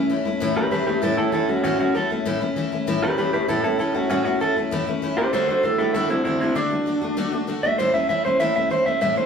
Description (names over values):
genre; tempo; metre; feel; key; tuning
rock; 196 BPM; 4/4; straight; A mixolydian; A4 = 441 Hz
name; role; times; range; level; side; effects
electric guitar through a small old amp; melody; 0.0-9.3 s; C4 to E5; -21 LUFS; right 2 dB; none
picked steel-string acoustic guitar; accompaniment; 0.0-9.3 s; A2 to F#4; -24 LUFS; left 3 dB; none
room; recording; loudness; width
wet large studio reverb, RT60 1.3 s; band playing live in one room; -19 LUFS; side -6 dB against mid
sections
0.4-9.3 A section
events
clean electric guitar solo 0.4-9.3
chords
0.4 A; 5.3 D; 7.8 A